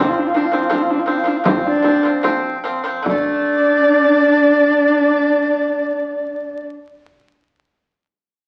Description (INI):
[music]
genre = mongolian traditional, Mongolian folk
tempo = 70-86 BPM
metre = 4/4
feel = straight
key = D yu mode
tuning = A4 = 438 Hz
[part]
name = dark horsehead fiddle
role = melody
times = 0.0-6.7 s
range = D4 to F4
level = -20 LUFS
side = equal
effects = none
[part]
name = pipa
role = arpeggios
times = 0.0-6.7 s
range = D3 to C4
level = -24 LUFS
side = equal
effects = none
[part]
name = frame drum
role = percussion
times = 0.5-3.5 s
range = none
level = -25 LUFS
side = equal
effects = none
[part]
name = mellow large dizi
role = second line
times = 1.6-6.7 s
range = D5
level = -18 LUFS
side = equal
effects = none
[sound]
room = wet large studio reverb, RT60 1.0 s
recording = very old 78 rpm record, vinyl crackle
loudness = -16 LUFS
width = mono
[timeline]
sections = 0.0-3.1 A section; 3.1-6.5 B section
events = slowing down 0.0-3.1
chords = 0.0 F5; 3.1 D5